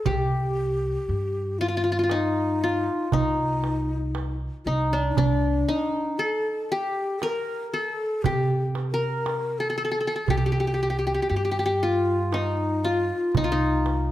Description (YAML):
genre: Turkish makam ensemble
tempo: 117 BPM (eighths)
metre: 10/8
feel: straight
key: unclear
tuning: A4 = 440 Hz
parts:
  - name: qanun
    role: melody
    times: 0.0-14.1 s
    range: D4-30c to Bb4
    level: -26 LUFS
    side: left 1 dB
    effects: none
  - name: breathy mellow ney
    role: second line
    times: 0.0-14.1 s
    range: D4-31c to Bb4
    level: -29 LUFS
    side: left 2 dB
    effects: none
  - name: upright bass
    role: bass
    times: 0.1-14.1 s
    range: C2 to C3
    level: -27 LUFS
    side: equal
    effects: none
  - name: darbuka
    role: percussion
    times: 0.1-14.1 s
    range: none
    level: -29 LUFS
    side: right 6 dB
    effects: none
room: light reverb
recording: none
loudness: -22 LUFS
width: side -13 dB against mid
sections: 0.0-14.1 A section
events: none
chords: none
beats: | 0.06 0.57 1.08 1.59 2.10 2.61 3.12 3.63 4.15 4.66 | 5.17 5.68 6.19 6.70 7.21 7.72 8.23 8.75 9.26 9.77 | 10.28 10.79 11.30 11.81 12.33 12.84 13.35 13.86